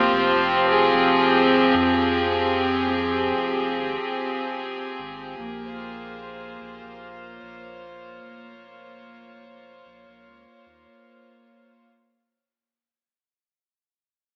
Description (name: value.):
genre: ambient dub.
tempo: 74 BPM.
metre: 4/4.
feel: swing 57% on 16ths.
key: Bb dorian.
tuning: A4 = 440 Hz.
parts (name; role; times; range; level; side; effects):
bright chamber string section; sustained chords; 0.0-11.9 s; F3 to Db5; -23 LUFS; equal; none.
soft dub sub bass; bass; 0.0-10.9 s; F1 to F2; -37 LUFS; equal; none.
room: wet echo chamber reverb, RT60 1.8 s.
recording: AM radio sound.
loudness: -21 LUFS.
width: mono.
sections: 0.0-11.9 A section.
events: fade-out 0.0-11.9.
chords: 0.0 Fmadd9; 5.4 Bbm9.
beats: 0.52 1.33 | 2.14 2.96 3.77 4.58 | 5.39 6.20 7.01 7.82 | 8.63 9.44 10.25 11.06.